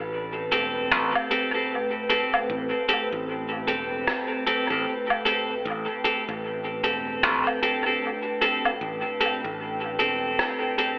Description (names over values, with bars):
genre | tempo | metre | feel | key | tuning
ambient dub | 76 BPM | 4/4 | swing 60% on 16ths | A minor | A4 = 436 Hz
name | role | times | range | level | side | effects
warbly tape-like pad | sustained chords | 0.0-11.0 s | A2 to A5 | -31 LUFS | equal | chorus, built-in reverb
modern bright fingered electric bass | bass | 0.0-10.4 s | E1 to A1 | -30 LUFS | equal | none
clean electric guitar | stabs | 0.5-11.0 s | C4 to A4 | -25 LUFS | equal | dub echo
lo-fi sampler-style drum kit | drums | 0.5-11.0 s | hi-hat, rim click, woodblock | -29 LUFS | equal | overdrive, studio ambience, dub echo
electronic kick drum | drums | 0.9-10.6 s | none | -43 LUFS | equal | none
room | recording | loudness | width
wet plate reverb, RT60 2.5 s | dreamy mix soaked in reverb, telephone sound | -22 LUFS | side -29 dB against mid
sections
0.0-11.0 A section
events
none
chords
0.0 Am7